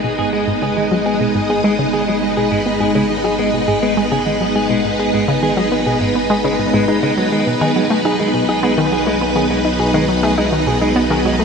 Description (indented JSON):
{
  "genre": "ambient, sequencer-driven space music",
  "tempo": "103 BPM",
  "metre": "4/4",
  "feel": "straight",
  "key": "G# minor",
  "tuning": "A4 = 439 Hz",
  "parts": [
    { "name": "string machine, full ensemble", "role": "sustained chords", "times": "0.0-11.4 s", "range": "F#3 to D#5", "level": "-16 LUFS", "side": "equal", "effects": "ensemble chorus, shimmer reverb" },
    { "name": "analog pluck", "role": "riff", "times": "0.0-11.4 s", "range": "G#2 to D#4", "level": "-20 LUFS", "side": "equal", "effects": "chorus, tape echo" },
    { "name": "round analog bass", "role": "bass", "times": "0.0-11.4 s", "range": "G#1 to B1", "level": "-32 LUFS", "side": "equal", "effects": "none" },
    { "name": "semi-hollow electric guitar", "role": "arpeggios", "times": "0.2-11.4 s", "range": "F#3 to G#4", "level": "-20 LUFS", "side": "equal", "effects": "auto-pan, tape echo, shimmer reverb" }
  ],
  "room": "wet huge ambient reverb, RT60 7.5 s",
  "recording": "nothing above 10.8 kHz",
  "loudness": "-14 LUFS",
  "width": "side -5 dB against mid",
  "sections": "0.0-11.4 A section",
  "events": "fade-in on analog synth bass 0.0-11.4; filter sweep on synth arpeggio sound 0.0-11.4",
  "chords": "0.0 G#m; 7.5 B",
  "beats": "| 0.48 1.06 1.64 2.22 | 2.81 3.39 3.97 4.55 | 5.14 5.72 6.30 6.88 | 7.47 8.05 8.63 9.21 | 9.80 10.38 10.96"
}